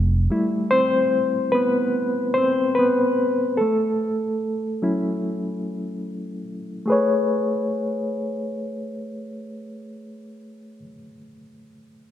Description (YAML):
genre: R&B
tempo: 73 BPM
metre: 4/4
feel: swing 63% on 16ths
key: A major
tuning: A4 = 439 Hz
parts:
  - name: reed electric piano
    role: accompaniment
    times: 0.3-12.1 s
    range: F#3 to C#5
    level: -21 LUFS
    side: left 1 dB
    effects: fast tremolo, low-pass filter
room: moderate lush hall reverb, RT60 1.9 s, digital ambience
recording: bright 1980s-style digital production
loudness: -20 LUFS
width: side -11 dB against mid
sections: 0.0-6.9 A section; 6.9-10.2 B section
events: reed electric piano solo 0.0-6.9; filter sweep on reed electric piano 0.0-6.9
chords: 0.0 Fmaj9 (rootless); 3.6 F#m7; 6.9 Amaj9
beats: | 0.30 1.12 1.94 2.76 | 3.58 4.41 5.23 6.05 | 6.87 7.69 8.52 9.34